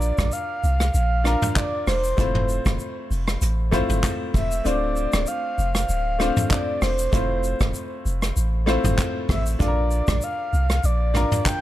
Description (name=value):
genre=afrobeats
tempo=97 BPM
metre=4/4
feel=swing 55% on 16ths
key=F major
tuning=A4 = 441 Hz
part: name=breathy flute-like synth lead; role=melody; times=0.0-11.6 s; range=C5 to G5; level=-26 LUFS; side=equal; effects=chorus
part: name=clear grand piano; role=accompaniment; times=0.0-11.6 s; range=A3 to C5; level=-28 LUFS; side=left 2 dB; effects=none
part: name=punchy sub bass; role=bass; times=0.0-11.3 s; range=D1 to C2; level=-23 LUFS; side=equal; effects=none
part: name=vintage brush drum kit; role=drums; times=0.0-11.6 s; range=handclaps, hi-hat, kick drum, rim click, shaker, toms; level=-24 LUFS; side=equal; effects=none
room=small room ambience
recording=none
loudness=-20 LUFS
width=side -14 dB against mid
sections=0.0-11.6 A section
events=kick muted 4.7-5.3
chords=0.0 Bb; 2.2 Fmaj7; 4.7 Dm7; 7.1 Fmaj7; 9.6 Bb